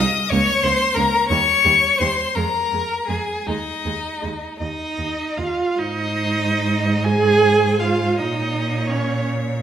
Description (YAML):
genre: classical, slow romantic movement for string quartet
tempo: 46-62 BPM (dotted quarters)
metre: 6/8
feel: rubato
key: Ab major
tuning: A4 = 443 Hz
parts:
  - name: rich violin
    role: melody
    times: 0.0-9.6 s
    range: C5 to Eb6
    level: -21 LUFS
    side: left 7 dB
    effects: none
  - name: rich violin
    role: second line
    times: 0.0-9.2 s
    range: Eb4 to Ab5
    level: -24 LUFS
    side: equal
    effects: none
  - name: rich viola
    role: accompaniment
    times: 0.0-9.3 s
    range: G3 to Ab4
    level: -22 LUFS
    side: right 4 dB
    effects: none
  - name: rich cello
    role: bass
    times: 0.0-9.6 s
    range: Db2 to Bb2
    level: -23 LUFS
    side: right 2 dB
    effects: none
room: wet recital hall reverb, RT60 1.6 s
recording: recorded in a church or concert hall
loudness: -17 LUFS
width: side -9 dB against mid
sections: 0.0-5.8 A section; 5.8-9.6 B section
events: none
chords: 0.3 Bbm/Db; 1.3 Eb7; 2.4 Fm; 3.5 Ab5/Eb; 4.6 Ebsus2; 5.8 Ab; 8.2 Bbmadd11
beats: 0.31 | 1.30 2.36 | 3.47 4.60 | 5.77 7.05 | 8.17 9.26